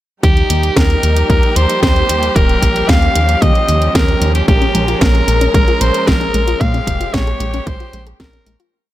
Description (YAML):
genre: italo disco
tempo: 113 BPM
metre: 4/4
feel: straight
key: Bb dorian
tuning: A4 = 440 Hz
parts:
  - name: raspy alto saxophone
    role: melody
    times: 0.2-8.6 s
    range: G4 to F5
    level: -17 LUFS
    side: equal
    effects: tape echo, shimmer reverb
  - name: rich studio string section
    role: sustained chords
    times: 0.2-8.7 s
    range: F3 to Bb4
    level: -20 LUFS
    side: equal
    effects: shimmer reverb
  - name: chorused synth bass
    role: bass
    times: 0.2-8.6 s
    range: Eb1 to Bb2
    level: -16 LUFS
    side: equal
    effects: none
  - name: electronic kick drum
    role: drums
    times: 0.2-8.3 s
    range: none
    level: -14 LUFS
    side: equal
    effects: overdrive
  - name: house drum kit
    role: drums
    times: 0.2-8.7 s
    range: hi-hat, snare drum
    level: -20 LUFS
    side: right 1 dB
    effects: overdrive
  - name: soft round pluck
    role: arpeggios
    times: 4.5-8.7 s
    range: Ab3 to Ab4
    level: -24 LUFS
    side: left 3 dB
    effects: chorus, digital delay
room: digital ambience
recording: none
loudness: -11 LUFS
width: side -14 dB against mid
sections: 0.2-8.7 verse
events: fade-out 5.9-8.7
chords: 0.2 Ebadd9; 4.5 Bbm7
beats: | 0.23 0.77 1.30 1.83 | 2.36 2.89 3.42 3.95 | 4.48 5.01 5.54 6.08 | 6.61 7.14 7.67 8.20